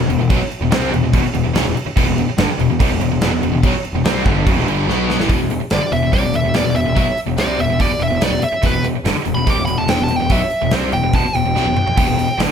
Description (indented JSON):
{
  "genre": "hard rock",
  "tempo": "144 BPM",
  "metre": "4/4",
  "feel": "straight",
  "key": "E minor",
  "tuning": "A4 = 440 Hz",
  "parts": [
    { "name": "crunchy overdriven guitar", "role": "riff", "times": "0.0-5.3 s", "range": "E2 to C4", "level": "-22 LUFS", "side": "left 1 dB", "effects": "none" },
    { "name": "overdriven electric guitar", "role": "riff", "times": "0.0-12.5 s", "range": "E2 to C4", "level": "-21 LUFS", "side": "left 7 dB", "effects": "phaser" },
    { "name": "tight distorted guitar", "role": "riff", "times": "0.0-12.5 s", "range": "E2 to C4", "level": "-23 LUFS", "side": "right 9 dB", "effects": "distortion" },
    { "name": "fuzz picked electric bass", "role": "bass", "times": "0.0-12.5 s", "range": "E1 to C2", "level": "-22 LUFS", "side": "equal", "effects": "overdrive" },
    { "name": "gated 80s drum kit", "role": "drums", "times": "0.1-12.5 s", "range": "crash cymbal, hi-hat, kick drum, snare drum, toms", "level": "-19 LUFS", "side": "right 1 dB", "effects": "none" },
    { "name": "dark smooth lead guitar", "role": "melody", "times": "5.7-12.4 s", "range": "B4 to D6", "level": "-20 LUFS", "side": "equal", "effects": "overdrive" }
  ],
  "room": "moderate large studio reverb, RT60 1.5 s",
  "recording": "band playing live in one room",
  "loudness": "-14 LUFS",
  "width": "side -8 dB against mid",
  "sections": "0.0-5.3 A section; 5.3-12.5 B section",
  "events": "drum fill 4.9-5.3, 11.6-12.0; lead electric guitar solo 5.3-12.5",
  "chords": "0.0 Em"
}